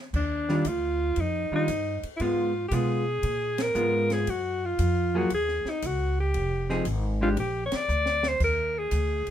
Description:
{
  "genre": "jazz, small-group swing and bop",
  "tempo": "116 BPM",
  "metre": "4/4",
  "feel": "swing 68% on 8ths",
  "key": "Eb major",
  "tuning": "A4 = 440 Hz",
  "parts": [
    { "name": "upright bass", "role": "bass", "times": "0.1-9.3 s", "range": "F1 to Cb3", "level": "-29 LUFS", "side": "equal", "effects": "none" },
    { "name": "open jazz drum kit", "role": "drums", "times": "0.1-9.3 s", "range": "crash cymbal, hi-hat, kick drum, ride cymbal, snare drum", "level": "-38 LUFS", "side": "equal", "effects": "none" },
    { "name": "clear alto saxophone", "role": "melody", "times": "0.2-9.3 s", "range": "D4 to D5", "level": "-27 LUFS", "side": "equal", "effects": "none" },
    { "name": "vintage hollow-body jazz guitar", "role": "accompaniment", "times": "0.5-7.4 s", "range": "Eb3 to Ab4", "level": "-27 LUFS", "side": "equal", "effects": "none" }
  ],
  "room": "light reverb",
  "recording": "minimal, uncompressed stereo recording",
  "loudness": "-24 LUFS",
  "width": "side -10 dB against mid",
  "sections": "0.1-9.3 A section",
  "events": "band accent 3.5, 7.6; drum fill 7.9-8.4",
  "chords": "0.1 Ebmaj9; 2.2 Abm69; 4.3 Gbmaj7(no3); 6.3 Fm7; 7.4 Bb; 8.4 Bbadd11"
}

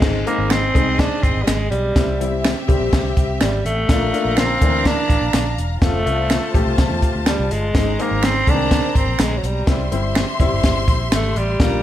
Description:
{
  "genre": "uptempo 1960s-style soul",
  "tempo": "124 BPM",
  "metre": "4/4",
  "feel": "straight",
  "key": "unclear",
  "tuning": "A4 = 441 Hz",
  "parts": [
    { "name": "growling alto saxophone", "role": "melody", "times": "0.0-11.8 s", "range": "Gb3 to D4", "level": "-21 LUFS", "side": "right 1 dB", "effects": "none" },
    { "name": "warm studio string section", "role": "second line", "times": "0.0-11.8 s", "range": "C4 to C6", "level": "-26 LUFS", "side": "left 1 dB", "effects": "none" },
    { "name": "clear grand piano", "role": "accompaniment", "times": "0.0-11.8 s", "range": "Eb3 to G4", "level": "-24 LUFS", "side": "left 4 dB", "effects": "none" },
    { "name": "vintage muted fingered electric bass", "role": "bass", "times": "0.0-11.8 s", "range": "E1 to E2", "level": "-23 LUFS", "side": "equal", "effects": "none" },
    { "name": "compact cocktail drum kit", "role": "drums", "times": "0.0-11.7 s", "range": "crash cymbal, hi-hat, kick drum, snare drum", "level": "-19 LUFS", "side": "equal", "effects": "none" },
    { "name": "finger snap", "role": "percussion", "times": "0.5-11.2 s", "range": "none", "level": "-29 LUFS", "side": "right 8 dB", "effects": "none" }
  ],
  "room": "moderate large studio reverb, RT60 1.0 s",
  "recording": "none",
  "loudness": "-16 LUFS",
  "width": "side -12 dB against mid",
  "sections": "0.0-11.8 A section",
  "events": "none",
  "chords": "0.0 Ab; 2.0 C; 3.9 Bb; 5.8 F; 7.7 Ab; 9.7 C"
}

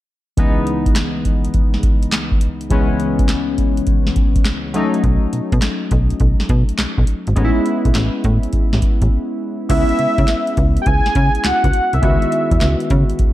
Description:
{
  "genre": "R&B, new jack swing",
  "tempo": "103 BPM",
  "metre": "4/4",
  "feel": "swing 67% on 16ths",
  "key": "C# minor",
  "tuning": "A4 = 439 Hz",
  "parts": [
    { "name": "warm analog keys", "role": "accompaniment", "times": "0.4-13.3 s", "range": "C#2 to F#4", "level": "-20 LUFS", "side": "left 2 dB", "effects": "chorus" },
    { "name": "booming analog drum machine", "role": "drums", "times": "0.4-13.3 s", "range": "crash cymbal, handclaps, hi-hat, kick drum, snare drum", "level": "-16 LUFS", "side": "equal", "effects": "none" },
    { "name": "slap-like FM bass", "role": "bass", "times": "5.0-13.3 s", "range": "G#1 to C#3", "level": "-17 LUFS", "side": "equal", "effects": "none" },
    { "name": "wide unison lead", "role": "melody", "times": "9.7-12.8 s", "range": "E5 to G#5", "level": "-18 LUFS", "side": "equal", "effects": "none" }
  ],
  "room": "light reverb, digital ambience",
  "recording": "dark, warm production",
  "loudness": "-14 LUFS",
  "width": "side -14 dB against mid",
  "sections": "0.4-9.7 A section; 9.7-13.3 B section",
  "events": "break 9.1-9.7",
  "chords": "0.4 C#m7; 4.7 B7; 7.4 Amaj7; 9.7 C#m7"
}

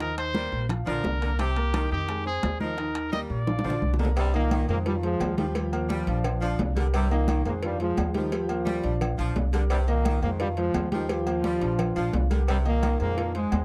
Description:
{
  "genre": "latin, salsa",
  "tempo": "173 BPM",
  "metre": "4/4",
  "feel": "straight",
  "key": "C minor",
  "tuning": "A4 = 440 Hz",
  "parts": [
    { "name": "bright trumpet", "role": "melody", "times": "0.0-4.0 s", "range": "G4 to Eb5", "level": "-33 LUFS", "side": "equal", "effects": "none" },
    { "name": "bright saxophone section", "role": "second line", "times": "0.0-13.3 s", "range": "C3 to G3", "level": "-38 LUFS", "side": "equal", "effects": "none" },
    { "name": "clear grand piano", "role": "accompaniment", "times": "0.0-13.6 s", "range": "D3 to C6", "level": "-35 LUFS", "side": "equal", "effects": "none" },
    { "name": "upright bass", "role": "bass", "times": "0.0-13.6 s", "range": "Bb1 to F2", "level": "-30 LUFS", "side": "equal", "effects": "none" },
    { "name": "bongos and cowbell", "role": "percussion", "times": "0.0-13.6 s", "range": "none", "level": "-40 LUFS", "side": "equal", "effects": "none" },
    { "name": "congas", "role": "percussion", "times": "0.0-13.6 s", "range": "none", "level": "-36 LUFS", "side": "equal", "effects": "none" },
    { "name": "timbales and agogo bells", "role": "percussion", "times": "0.0-13.6 s", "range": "none", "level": "-38 LUFS", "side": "equal", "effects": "none" },
    { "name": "brilliant trombone section", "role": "melody", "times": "4.2-13.6 s", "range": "G2 to F4", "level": "-31 LUFS", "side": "equal", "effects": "none" }
  ],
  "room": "little or no reverb",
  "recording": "dry, close 1970s-style studio recording",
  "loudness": "-26 LUFS",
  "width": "mono",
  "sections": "0.0-4.2 A section; 4.2-13.6 B section",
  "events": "drum fill 3.5-4.2",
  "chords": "0.0 Eb6; 0.7 Bb; 1.4 Cm7; 2.1 Fm7; 2.8 Eb; 3.5 Bb; 4.2 Cm7; 4.9 Fm7; 5.6 Eb69; 6.2 Bb; 6.9 Cm7; 7.6 Fm7; 8.3 Eb69; 9.0 Bb; 9.7 Cm7; 10.4 Fm7; 11.1 Eb69; 11.8 Bb; 12.5 Cm7"
}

